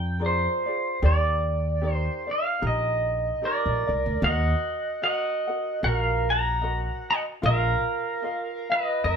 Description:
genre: Hawaiian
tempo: 75 BPM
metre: 4/4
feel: swing 57% on 8ths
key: Eb major, Eb minor from 4.2 s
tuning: A4 = 440 Hz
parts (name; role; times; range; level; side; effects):
- pedal steel guitar; melody; 0.0-9.2 s; Bb4 to Bb5; -25 LUFS; right 1 dB; none
- ukulele; accompaniment; 0.0-9.2 s; Eb4 to Gb5; -33 LUFS; left 2 dB; none
- upright bass; bass; 0.0-9.2 s; Bb1 to F2; -26 LUFS; equal; none
room: moderate studio reverb, RT60 0.7 s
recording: band playing live in one room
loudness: -23 LUFS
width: side -6 dB against mid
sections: 0.0-4.2 A section; 4.2-9.2 B section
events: none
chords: 0.0 Bb7; 1.0 Ebmaj7; 4.2 Ebm; 7.4 Bbsus4

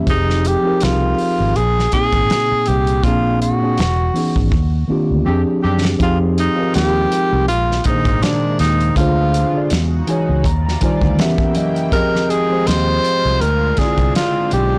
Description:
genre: R&B, neo-soul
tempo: 81 BPM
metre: 4/4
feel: swing 55% on 16ths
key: F dorian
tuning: A4 = 440 Hz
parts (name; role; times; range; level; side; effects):
- mellow tine electric piano; accompaniment; 0.0-14.8 s; Bb2 to Bb5; -21 LUFS; equal; none
- warm tenor saxophone; melody; 0.1-14.8 s; D4 to C5; -21 LUFS; equal; none
- vintage muted fingered electric bass; bass; 0.1-14.8 s; E1 to Gb2; -21 LUFS; equal; none
- warm soul drum kit; drums; 0.1-14.7 s; hi-hat, kick drum, snare drum; -23 LUFS; equal; none
- clear horn section; stabs; 5.3-5.9 s; C4 to G4; -29 LUFS; equal; none
- chorused pulse-width pad; sustained chords; 6.3-14.8 s; C3 to G5; -31 LUFS; equal; none
room: light reverb, studio reverb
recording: blown-out, overdriven recording, overdrive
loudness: -16 LUFS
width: mono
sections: 0.0-6.0 A section; 6.0-14.8 A section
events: band accent 3.0-6.0; drum fill 4.5-6.0; tine electric piano fill 9.7-11.9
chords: 0.1 Fm9; 1.6 Bb9sus4; 3.0 Bb9; 3.8 Emaj13; 4.5 Ebmaj13; 5.3 Fm69; 6.0 Fm9; 7.5 Bb9sus4; 9.0 Dm7b5; 9.7 Emaj13; 10.4 Ebmaj13; 11.2 Edim7; 11.9 Fm9; 13.4 Dm7b5

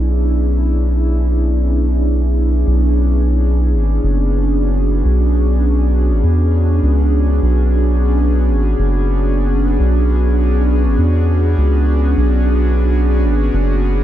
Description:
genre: ambient dub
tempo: 101 BPM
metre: 4/4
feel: swing 59% on 16ths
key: B dorian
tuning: A4 = 439 Hz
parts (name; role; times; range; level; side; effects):
- airy breathy pad; sustained chords; 0.0-14.0 s; B3 to G#4; -18 LUFS; equal; chorus
- soft dub sub bass; bass; 0.0-14.0 s; F#1 to E2; -14 LUFS; equal; none
room: light reverb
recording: none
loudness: -13 LUFS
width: side -12 dB against mid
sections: 0.0-2.7 A section; 2.7-14.0 B section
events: none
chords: 0.0 Bm69

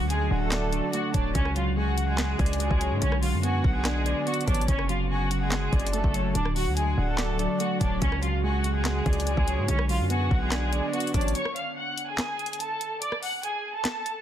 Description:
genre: hip hop, trap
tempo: 144 BPM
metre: 4/4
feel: half-time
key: F# harmonic minor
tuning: A4 = 440 Hz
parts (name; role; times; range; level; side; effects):
- clear studio violin section; melody; 0.0-14.2 s; G#3 to F#6; -30 LUFS; equal; low-pass filter
- soft electric-piano-like synth keys; accompaniment; 0.0-11.4 s; C#3 to D5; -31 LUFS; right 3 dB; chorus, low-pass filter
- glassy FM pad; sustained chords; 0.0-11.3 s; C#3 to F#4; -35 LUFS; left 2 dB; ensemble chorus, built-in reverb
- hard-hitting 808-style bass; bass; 0.0-11.3 s; D1 to G#2; -27 LUFS; equal; none
- breathy flute-like synth lead; second line; 0.1-11.3 s; C#5 to G#5; -36 LUFS; left 3 dB; chorus, tape echo
- trap drum kit; drums; 0.1-14.2 s; handclaps, hi-hat, kick drum, rim click, snare drum; -28 LUFS; equal; soft clipping on snare
room: little or no reverb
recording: dense, heavily limited modern master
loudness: -24 LUFS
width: side -10 dB against mid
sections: 0.0-11.4 A section; 11.4-14.2 B section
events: break 11.4-14.2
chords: 0.0 D; 1.4 C#sus4; 3.0 Bmadd9; 4.7 F#m; 6.4 D; 8.0 C#sus4; 9.7 Bmadd9; 11.4 F#m; 13.0 D

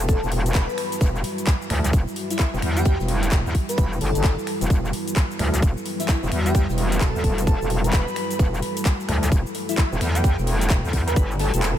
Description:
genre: bass house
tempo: 130 BPM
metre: 4/4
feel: swing 62% on 16ths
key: E minor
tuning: A4 = 440 Hz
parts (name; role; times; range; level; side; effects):
- dark analog pad; sustained chords; 0.0-11.8 s; G3 to E5; -30 LUFS; equal; chorus, sidechain pumping
- metallic wobble bass; bass; 0.0-11.7 s; E1 to E2; -23 LUFS; equal; chorus, overdrive, sidechain pumping
- garage drum kit; drums; 0.0-11.7 s; finger snaps, handclaps, hi-hat, shaker; -30 LUFS; left 1 dB; none
- airy dreamy lead; melody; 0.1-11.8 s; E4 to B4; -29 LUFS; equal; chorus, analog delay
- electronic kick drum; drums; 0.1-11.3 s; none; -19 LUFS; equal; none
- jazz brush drum kit; drums; 0.1-11.8 s; hi-hat, snare drum; -40 LUFS; left 3 dB; none
room: light reverb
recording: none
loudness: -19 LUFS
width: side -11 dB against mid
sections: 0.0-11.8 A section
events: kick drops out 11.6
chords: 0.0 Emadd9

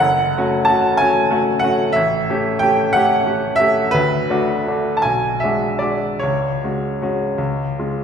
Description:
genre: classical, romantic nocturne for solo piano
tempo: 48-64 BPM (dotted quarters)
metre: 12/8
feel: rubato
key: F# minor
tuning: A4 = 439 Hz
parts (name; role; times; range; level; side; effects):
- clear baby grand piano; solo; 0.0-8.0 s; F#1 to A5; -15 LUFS; equal; none
room: wet concert hall reverb, RT60 2.0 s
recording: heard from further back in the room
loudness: -15 LUFS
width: side -7 dB against mid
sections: 0.0-8.0 A section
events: none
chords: 0.0 F#m; 2.0 A7; 3.9 D6; 5.0 G#m7b5/B; 6.2 C#sus4; 7.4 C#

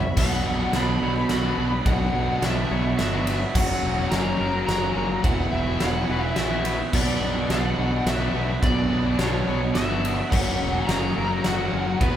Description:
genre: post-rock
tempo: 106 BPM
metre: 3/4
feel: straight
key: B harmonic minor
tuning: A4 = 440 Hz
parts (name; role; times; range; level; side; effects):
- overdriven slide guitar; melody; 0.0-12.2 s; B4 to B5; -29 LUFS; equal; none
- clear studio string section; sustained chords; 0.0-12.2 s; F#4 to B5; -40 LUFS; left 1 dB; none
- twangy electric guitar; arpeggios; 0.0-12.2 s; E2 to C#5; -34 LUFS; left 2 dB; none
- fuzz guitar; riff; 0.0-12.2 s; B2 to F#4; -28 LUFS; left 4 dB; distortion
- growling fingered electric bass; bass; 0.0-12.2 s; E1 to B1; -28 LUFS; equal; overdrive
- fuzz guitar; riff; 0.2-12.2 s; F#2 to E4; -29 LUFS; right 6 dB; distortion
- huge arena drum kit; drums; 0.2-12.1 s; crash cymbal, kick drum, ride cymbal, snare drum, splash cymbal; -26 LUFS; equal; none
room: moderate large studio reverb, RT60 1.2 s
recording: band playing live in one room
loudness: -21 LUFS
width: side -10 dB against mid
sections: 0.0-12.2 A section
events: drum fill 0.0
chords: 0.2 Bmadd9; 3.6 F#; 5.2 Esus2; 6.9 Bmadd9; 10.3 F#

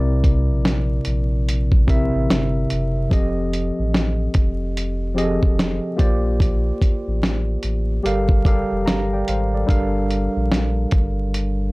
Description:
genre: lo-fi hip hop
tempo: 73 BPM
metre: 4/4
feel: swing 63% on 16ths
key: G dorian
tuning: A4 = 440 Hz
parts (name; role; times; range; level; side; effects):
- tine electric piano; accompaniment; 0.0-11.7 s; C3 to Bb5; -23 LUFS; equal; medium stereo tremolo
- warm sub bass; bass; 0.0-11.7 s; F1 to C2; -22 LUFS; equal; tube saturation
- dusty soul sampler-style drum kit; drums; 0.2-11.6 s; hi-hat, kick drum, snare drum; -18 LUFS; equal; none
room: little or no reverb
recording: dry, gritty hardware recording, vinyl crackle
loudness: -17 LUFS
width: side -23 dB against mid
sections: 0.0-9.7 A section; 9.7-11.7 A section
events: none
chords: 0.0 C9; 3.1 F9; 6.0 Bb69; 8.0 Gm7; 9.7 Gm9

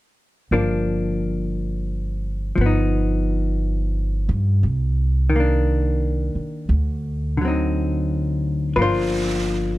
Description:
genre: jazz ballad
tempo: 58 BPM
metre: 4/4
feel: swing 67% on 8ths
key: G minor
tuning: A4 = 440 Hz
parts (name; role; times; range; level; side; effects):
- hollow-body jazz guitar; accompaniment; 0.5-9.8 s; D3 to C5; -22 LUFS; left 2 dB; none
- upright bass; bass; 0.5-9.8 s; G1 to G2; -21 LUFS; equal; none
- brushed snare drum; drums; 8.8-9.8 s; none; -31 LUFS; right 2 dB; none
room: little or no reverb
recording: dark, warm production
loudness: -19 LUFS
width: side -17 dB against mid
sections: 0.5-8.8 A section; 8.8-9.8 B section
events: none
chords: 0.5 Gm7; 2.6 Gaug7; 4.6 Cm9; 6.7 D7b9; 8.8 Gm7

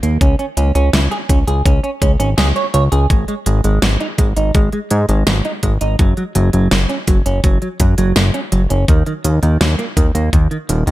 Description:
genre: synthwave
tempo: 83 BPM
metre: 4/4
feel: straight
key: unclear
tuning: A4 = 439 Hz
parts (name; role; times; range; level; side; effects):
- clean electric guitar; riff; 0.0-10.9 s; D#3 to C#5; -20 LUFS; right 3 dB; lush chorus, tape echo
- fat analog bass; bass; 0.0-10.9 s; D#1 to G#2; -15 LUFS; equal; tube saturation, sidechain pumping
- pop drum kit; drums; 0.0-10.9 s; hi-hat, snare drum; -19 LUFS; equal; gated reverb
- electronic kick drum; drums; 0.2-10.5 s; none; -14 LUFS; equal; none
room: digital ambience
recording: none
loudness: -12 LUFS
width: side -16 dB against mid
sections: 0.0-10.9 A section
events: none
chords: 0.2 C#5; 3.1 G#5; 6.0 F#5; 8.9 N.C.

